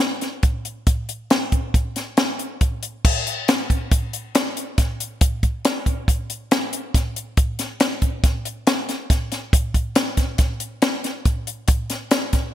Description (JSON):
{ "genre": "rock", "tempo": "139 BPM", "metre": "5/4", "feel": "straight", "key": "none", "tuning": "none", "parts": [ { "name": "compact cocktail drum kit", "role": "drums", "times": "0.2-12.4 s", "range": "crash cymbal, hi-hat, kick drum, snare drum", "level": "-19 LUFS", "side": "equal", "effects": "none" } ], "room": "light reverb", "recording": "bright 1980s-style digital production", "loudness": "-19 LUFS", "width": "side -12 dB against mid", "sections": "0.0-3.0 A section; 3.0-12.5 B section", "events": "none", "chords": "none" }